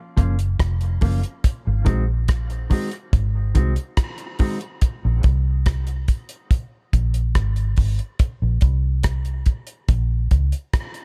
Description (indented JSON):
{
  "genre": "dub reggae",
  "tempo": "71 BPM",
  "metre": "4/4",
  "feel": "straight",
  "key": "Bb minor",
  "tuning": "A4 = 438 Hz",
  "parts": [
    { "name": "mellow electric guitar", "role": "accompaniment", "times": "0.2-4.7 s", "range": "Eb3 to Gb4", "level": "-31 LUFS", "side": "equal", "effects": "dub echo" },
    { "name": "vintage muted fingered electric bass", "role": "bass", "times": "0.2-10.5 s", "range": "F1 to Db2", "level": "-22 LUFS", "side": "equal", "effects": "none" },
    { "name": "damped 70s drum kit", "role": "drums", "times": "0.2-11.0 s", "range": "hi-hat, kick drum, rim click", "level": "-21 LUFS", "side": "equal", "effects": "none" }
  ],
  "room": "small room ambience",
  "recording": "none",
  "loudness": "-21 LUFS",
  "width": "mono",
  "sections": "0.0-11.0 A section",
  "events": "none",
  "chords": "0.0 Gbmaj7; 1.4 Ab7; 4.8 Bb7(no3)"
}